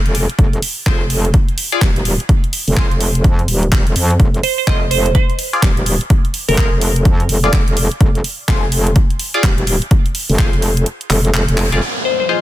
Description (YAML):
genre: bass house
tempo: 126 BPM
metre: 4/4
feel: swing 62% on 16ths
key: F dorian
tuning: A4 = 438 Hz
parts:
  - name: metallic wobble bass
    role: bass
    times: 0.0-11.8 s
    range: Eb1 to F2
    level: -16 LUFS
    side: equal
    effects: chorus, tube saturation, sidechain pumping
  - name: garage drum kit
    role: drums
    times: 0.1-12.4 s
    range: crash cymbal, handclaps, hi-hat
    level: -21 LUFS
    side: right 1 dB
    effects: low-pass filter on snare, studio reverb, low-pass filter on hats, low-pass filter on cymbals
  - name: electronic kick drum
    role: drums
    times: 0.4-10.5 s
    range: none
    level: -13 LUFS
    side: equal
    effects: studio reverb
  - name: band-passed chord stab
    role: stabs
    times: 0.9-12.4 s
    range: F4 to D5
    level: -23 LUFS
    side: left 3 dB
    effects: phaser, lush chorus, sidechain pumping, ping-pong delay
  - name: glassy wavetable pluck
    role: melody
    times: 4.4-6.7, 12.1-12.4 s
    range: Bb4 to Eb5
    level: -19 LUFS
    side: right 1 dB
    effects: chorus, ping-pong delay
  - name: downlifter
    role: sound effects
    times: 11.8-12.4 s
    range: none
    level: -20 LUFS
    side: right 2 dB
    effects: none
room: digital ambience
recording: dense, heavily limited modern master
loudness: -12 LUFS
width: side -14 dB against mid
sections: 0.0-11.8 A section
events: kick drops out 10.9-11.8; drum fill 11.6; band accent 11.6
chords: 0.0 Fm